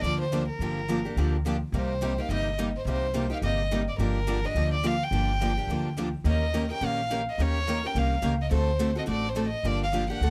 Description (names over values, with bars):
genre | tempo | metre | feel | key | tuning
acoustic string swing (jazz manouche) | 212 BPM | 4/4 | swing 58% on 8ths | G minor | A4 = 440 Hz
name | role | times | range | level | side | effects
warm violin | melody | 0.0-10.3 s | Bb4 to G5 | -33 LUFS | equal | none
picked steel-string acoustic guitar | accompaniment | 0.0-10.3 s | C3 to Bb4 | -34 LUFS | equal | none
picked steel-string acoustic guitar | accompaniment | 0.0-10.3 s | C3 to Bb4 | -38 LUFS | equal | none
upright bass | bass | 0.0-10.3 s | G1 to Eb2 | -31 LUFS | equal | none
room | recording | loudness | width
light reverb | close, detailed microphones | -27 LUFS | mono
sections
0.0-10.3 A section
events
none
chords
0.0 Gm7; 1.7 Cm7; 4.0 Gm7; 6.2 Eb7; 8.5 D7; 9.6 Gm7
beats
0.03 0.31 | 0.59 0.88 1.16 1.44 | 1.73 2.01 2.29 2.57 | 2.86 3.14 3.42 3.71 | 3.99 4.27 4.55 4.84 | 5.12 5.40 5.68 5.97 | 6.25 6.53 6.81 7.10 | 7.38 7.66 7.94 8.23 | 8.51 8.79 9.07 9.36 | 9.64 9.92 10.21